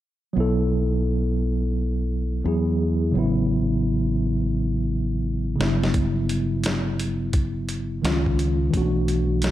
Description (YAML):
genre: hip hop, jazz-hop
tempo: 86 BPM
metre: 4/4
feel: swing 66% on 16ths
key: unclear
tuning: A4 = 438 Hz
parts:
  - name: mellow tine electric piano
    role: accompaniment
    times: 0.3-9.5 s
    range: C#3 to A4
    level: -23 LUFS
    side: equal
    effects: medium stereo tremolo
  - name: fingered electric bass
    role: bass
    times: 0.4-9.5 s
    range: G1 to E2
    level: -25 LUFS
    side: equal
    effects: none
  - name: boom bap sampler-style drum kit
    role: drums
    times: 5.6-9.5 s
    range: hi-hat, kick drum, snare drum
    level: -26 LUFS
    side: equal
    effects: none
room: light reverb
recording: none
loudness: -21 LUFS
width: side -13 dB against mid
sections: 0.4-9.5 A section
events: drum fill 4.5-5.9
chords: 0.4 B7sus4; 2.5 Eadd9; 3.2 Aadd9; 5.6 Gmaj7#11; 8.0 C#add9; 8.7 Bm7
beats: | 0.36 1.06 1.76 2.45 | 3.15 3.85 4.55 5.24 | 5.94 6.64 7.34 8.04 | 8.73 9.43